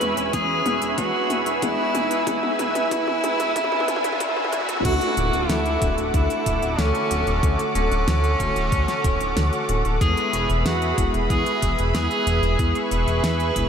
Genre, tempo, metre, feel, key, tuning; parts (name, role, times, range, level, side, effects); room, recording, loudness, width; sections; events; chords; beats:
synthwave; 93 BPM; 4/4; straight; A4 = 439 Hz
bright tenor saxophone; melody; 0.0-13.7 s; C#4 to B4; -24 LUFS; equal; diffuse ambient delay, shimmer reverb
warm analog pad; sustained chords; 0.0-13.7 s; G#4 to E6; -27 LUFS; right 2 dB; chorus, vintage 12-bit sampler grit, sidechain pumping, shimmer reverb
mellow FM electric piano; stabs; 0.0-13.7 s; D3 to B4; -30 LUFS; left 3 dB; chorus, tremolo, vintage 12-bit sampler grit, diffuse ambient delay, shimmer reverb
chorused synth bass; bass; 0.0-13.7 s; D1 to E2; -25 LUFS; equal; sidechain pumping
pop drum kit; drums; 0.0-13.7 s; crash cymbal, hi-hat, snare drum, toms; -30 LUFS; left 1 dB
riser and swell; sound effects; 0.2-4.8 s; -32 LUFS; right 1 dB
electronic kick drum; drums; 0.3-13.7 s; -25 LUFS; equal
wet huge ambient reverb, RT60 9.5 s; dreamy mix soaked in reverb, high-pass filter; -19 LUFS; side -7 dB against mid
0.0-4.8 A section; 4.8-13.7 B section
drum fill 0.0-4.8; filter sweep on FM electric piano 0.0-4.8; riser 0.2-4.8; swell 3.6-4.8
0.0 E; 4.8 D; 10.0 E
0.33 0.98 1.62 | 2.27 2.92 3.56 4.21 | 4.85 5.50 6.14 6.79 | 7.43 8.08 8.72 9.37 | 10.01 10.66 11.30 11.95 | 12.59 13.24